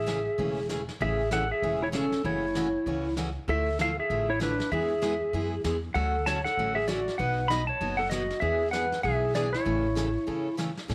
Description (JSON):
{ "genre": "country, western swing", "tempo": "194 BPM", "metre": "4/4", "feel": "swing 61% on 8ths", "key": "A major", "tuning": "A4 = 439 Hz", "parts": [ { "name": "clean lap steel guitar", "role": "melody", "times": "0.0-10.5 s", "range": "C#4 to B5", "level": "-30 LUFS", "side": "equal", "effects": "none" }, { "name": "upright bass", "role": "bass", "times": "0.0-10.9 s", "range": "E1 to A2", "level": "-36 LUFS", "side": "equal", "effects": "none" }, { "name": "picked steel-string acoustic guitar", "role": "accompaniment", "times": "0.1-10.9 s", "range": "B2 to A4", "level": "-36 LUFS", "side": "equal", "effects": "none" }, { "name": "vintage brush drum kit", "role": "drums", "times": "0.1-10.9 s", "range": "brushed snare drum, hi-hat, kick drum, snare drum", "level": "-43 LUFS", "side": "equal", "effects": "none" } ], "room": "moderate plate reverb, RT60 1.5 s, studio ambience", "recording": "none", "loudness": "-28 LUFS", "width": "mono", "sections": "0.0-10.9 A section", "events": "break 10.3-10.9", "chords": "0.0 Amaj7; 2.2 F#m7; 3.5 Dmadd9; 4.7 E; 6.0 Dmaj7; 7.2 B; 8.4 E7; 9.7 A" }